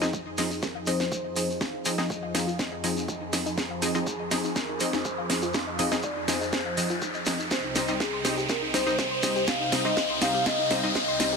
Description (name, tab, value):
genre	progressive house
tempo	122 BPM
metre	4/4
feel	straight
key	F minor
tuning	A4 = 441 Hz
part	warm velvety synth lead	melody	0.0-11.3 s	Ab4 to F5	-32 LUFS	left 1 dB	chorus, sidechain pumping, digital delay
part	supersaw pad	sustained chords	0.0-11.4 s	C2 to G5	-36 LUFS	right 2 dB	sidechain pumping, low-pass filter
part	soft round pluck	arpeggios	0.0-11.4 s	Eb4 to C6	-36 LUFS	left 2 dB	chorus, sidechain pumping, digital delay
part	wide unison pluck	stabs	0.0-11.3 s	F3 to Eb5	-31 LUFS	left 1 dB	sidechain pumping, digital delay
part	house drum kit	drums	0.0-11.3 s	hi-hat, snare drum	-30 LUFS	right 1 dB	studio reverb
part	shekere	percussion	0.0-11.4 s	none	-35 LUFS	left 2 dB	none
part	riser	sound effects	1.5-11.4 s	none	-32 LUFS	left 1 dB	none
part	electronic kick drum	drums	0.1-11.1 s	none	-38 LUFS	right 1 dB	overdrive, high-pass filter on kick, studio reverb, high-pass filter on room
room	light reverb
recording	none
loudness	-24 LUFS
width	side -4 dB against mid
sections	0.0-11.4 A section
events	build-up 0.0-11.4; drum fill 0.0-11.4; filter sweep on synth pluck 0.0-11.4; filter sweep on supersaw synth 0.0-11.4; filter sweep on soft synth lead 0.0-11.4; riser 1.5-11.4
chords	0.0 Fm7; 7.5 Cm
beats	0.13 0.63 1.12 | 1.61 2.10 2.59 3.08 | 3.58 4.07 4.56 5.05 | 5.54 6.04 6.53 7.02 | 7.51 8.00 8.49 8.99 | 9.48 9.97 10.46 10.95